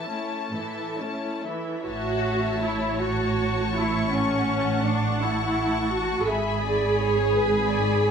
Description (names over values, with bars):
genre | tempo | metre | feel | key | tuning
classical, slow romantic movement for string orchestra | 44-57 BPM (dotted quarters) | 12/8 | rubato | A major | A4 = 440 Hz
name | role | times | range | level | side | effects
clear symphonic violin section | melody | 0.0-8.1 s | G#5 to C#6 | -33 LUFS | left 4 dB | none
rich symphonic violin section | second line | 0.0-8.1 s | E4 to B5 | -30 LUFS | left 4 dB | none
rich symphonic viola section | accompaniment | 0.0-8.1 s | E3 to A4 | -26 LUFS | right 1 dB | none
warm symphonic cello section | bass | 0.0-8.1 s | G#2 to A2 | -29 LUFS | right 2 dB | none
rich symphonic double bass section | bass | 1.9-8.1 s | G#1 to A1 | -30 LUFS | right 3 dB | none
room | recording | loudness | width
moderate scoring stage reverb, RT60 1.7 s | none | -22 LUFS | side -7 dB against mid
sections
0.0-1.9 A section; 1.9-8.1 A section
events
none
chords
0.0 A; 6.3 E7/G# (rootless)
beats
0.53 | 1.85 2.99 4.11 5.20 | 6.28 7.34